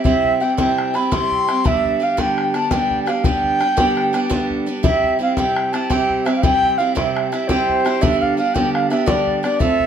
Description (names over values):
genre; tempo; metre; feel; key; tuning
celtic folk, Celtic slip jig; 113 BPM (dotted quarters); 9/8; straight; unclear; A4 = 439 Hz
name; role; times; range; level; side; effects
bright reedy baroque flute; melody; 0.0-9.9 s; C5 to C6; -19 LUFS; right 1 dB; none
picked acoustic archtop guitar; accompaniment; 0.0-9.9 s; G2 to A4; -20 LUFS; right 2 dB; none
bodhran; percussion; 0.0-9.8 s; none; -22 LUFS; left 2 dB; none
room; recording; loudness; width
wet studio reverb, RT60 0.5 s; band playing live in one room; -16 LUFS; side -8 dB against mid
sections
0.0-4.8 A section; 4.8-9.9 A section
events
none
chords
0.0 C; 1.6 G; 4.8 C; 8.0 G